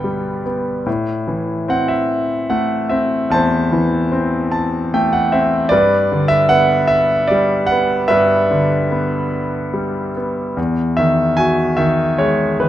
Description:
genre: classical, lyrical solo piano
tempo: 74 BPM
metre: 3/4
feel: rubato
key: E minor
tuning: A4 = 440 Hz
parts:
  - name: bright concert grand piano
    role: solo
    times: 0.0-12.7 s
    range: E2 to A5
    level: -14 LUFS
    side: equal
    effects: none
room: moderate recital hall reverb, RT60 1.7 s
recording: dark, warm production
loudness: -14 LUFS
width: side -12 dB against mid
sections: 0.0-10.6 A section; 10.6-12.7 B section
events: grand piano fill 4.1-5.7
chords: 0.0 Em7/G; 0.9 Am; 5.7 Em7/G; 10.6 Emaj9

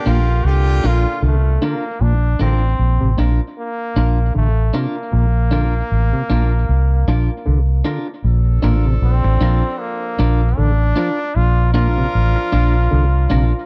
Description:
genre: reggae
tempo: 77 BPM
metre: 4/4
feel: swing 58% on 16ths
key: Bb major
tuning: A4 = 440 Hz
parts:
  - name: brilliant trombone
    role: melody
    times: 0.0-13.7 s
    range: A3 to G4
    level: -26 LUFS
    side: equal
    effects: tape echo
  - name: warm horn section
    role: second line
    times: 0.0-1.6, 8.2-13.7 s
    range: Bb2 to Bb4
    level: -31 LUFS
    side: equal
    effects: tape echo
  - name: clean electric guitar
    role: accompaniment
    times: 0.1-13.5 s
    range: D4 to Bb4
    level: -26 LUFS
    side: equal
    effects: tape echo
  - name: overdriven clav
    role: arpeggios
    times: 0.1-13.4 s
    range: Bb2 to F3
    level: -25 LUFS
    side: equal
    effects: none
  - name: vintage muted fingered electric bass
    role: bass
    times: 0.1-13.5 s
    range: A1 to C2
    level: -17 LUFS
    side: equal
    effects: none
room: little or no reverb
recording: dry, close 1970s-style studio recording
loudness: -17 LUFS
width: mono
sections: 0.0-8.2 A section; 8.2-13.7 B section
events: none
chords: 0.0 Bb

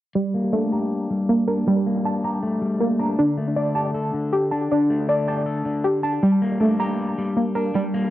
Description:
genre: hip hop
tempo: 158 BPM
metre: 4/4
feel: half-time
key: G minor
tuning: A4 = 439 Hz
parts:
  - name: electric guitar at the edge of break-up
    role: accompaniment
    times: 0.2-8.1 s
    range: D3 to A4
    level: -23 LUFS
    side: left 2 dB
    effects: low-pass filter, cassette tape
  - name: glassy wavetable pluck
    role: arpeggios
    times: 0.2-8.1 s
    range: G3 to Bb5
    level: -21 LUFS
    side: right 1 dB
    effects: chorus, low-pass filter, cassette tape, analog delay
room: moderate studio reverb, RT60 0.6 s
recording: home recording on cassette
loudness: -19 LUFS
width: side -14 dB against mid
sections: 0.2-8.1 A section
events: filter sweep 0.2-8.1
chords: 0.2 Gmadd9; 3.2 Dsus4; 6.2 Gmadd9

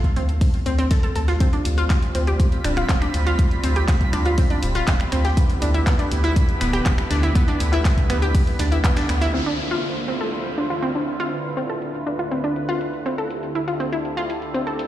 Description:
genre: progressive house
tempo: 121 BPM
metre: 4/4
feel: straight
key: D dorian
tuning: A4 = 440 Hz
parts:
  - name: big-room dance drum kit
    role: drums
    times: 0.0-14.9 s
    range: finger snaps, handclaps, hi-hat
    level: -30 LUFS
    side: equal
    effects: low-pass filter on hats, low-pass filter on snare
  - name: electronic kick drum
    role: drums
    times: 0.0-8.9 s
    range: none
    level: -18 LUFS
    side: equal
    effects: none
  - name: analog pluck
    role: arpeggios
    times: 0.2-14.7 s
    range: B3 to A4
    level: -25 LUFS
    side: equal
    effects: chorus, cassette tape, sidechain pumping, ping-pong delay
  - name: saturated sub bass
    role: bass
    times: 0.2-9.3 s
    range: D1 to D2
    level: -20 LUFS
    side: equal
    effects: sidechain pumping
  - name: breakbeat sampler-style drum kit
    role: drums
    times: 0.2-9.3 s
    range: hi-hat, snare drum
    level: -40 LUFS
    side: equal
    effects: none
  - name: filtered supersaw swell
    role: sustained chords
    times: 1.4-14.9 s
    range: D2 to C5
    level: -28 LUFS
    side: right 1 dB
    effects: sidechain pumping
  - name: twinkling granular texture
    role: texture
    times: 2.1-9.3 s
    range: B5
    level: -35 LUFS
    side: right 2 dB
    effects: built-in reverb, sidechain pumping
  - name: downlifter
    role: sound effects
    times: 9.3-13.3 s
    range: none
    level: -32 LUFS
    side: right 1 dB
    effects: none
room: light reverb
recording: played on a big sound system in a bare room, large studio reverb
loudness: -18 LUFS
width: side -13 dB against mid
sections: 0.0-9.3 A section; 9.3-14.9 B section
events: band accent 8.8; filter sweep on drum 9.3-14.9; filter sweep on synth pluck 9.3-14.9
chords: 0.0 F/D (rootless); 1.4 G7sus4/D; 5.4 Em7/D; 9.3 Dm7; 13.3 Fmaj7/D

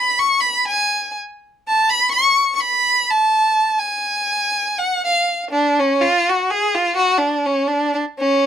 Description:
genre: balkan folk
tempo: free time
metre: none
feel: none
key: C# phrygian dominant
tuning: A4 = 440 Hz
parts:
  - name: warm violin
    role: solo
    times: 0.0-8.5 s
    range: C#4 to C#6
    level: -15 LUFS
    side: equal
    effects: none
room: light reverb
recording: none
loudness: -15 LUFS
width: side -9 dB against mid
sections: 0.0-5.5 A section; 5.5-8.5 B section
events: violin solo 0.0-5.5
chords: none

